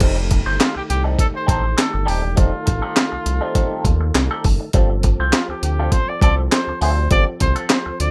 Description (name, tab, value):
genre	funk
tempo	101 BPM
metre	4/4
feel	straight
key	unclear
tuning	A4 = 442 Hz
part	clean electric guitar	accompaniment	0.0-7.9 s	G3 to C5	-27 LUFS	equal	wah
part	tonewheel organ	sustained chords	0.0-8.1 s	Eb3 to A4	-32 LUFS	equal	slow rotary speaker, overdrive, chorus vibrato
part	round analog bass	bass	0.0-8.1 s	Eb1 to Eb2	-22 LUFS	equal	none
part	breakbeat sampler-style drum kit	drums	0.0-8.1 s	crash cymbal, handclaps, hi-hat, kick drum, snare drum	-20 LUFS	equal	none
part	mellow trumpet	melody	0.6-8.1 s	F4 to D5	-27 LUFS	equal	none
room	little or no reverb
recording	rough home demo mix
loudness	-18 LUFS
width	mono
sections	0.0-8.1 A section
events	none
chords	0.0 F9; 4.7 G9sus4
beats	| 0.01 0.60 1.20 1.78 | 2.38 2.97 3.56 4.15 | 4.74 5.33 5.93 6.52 | 7.11 7.70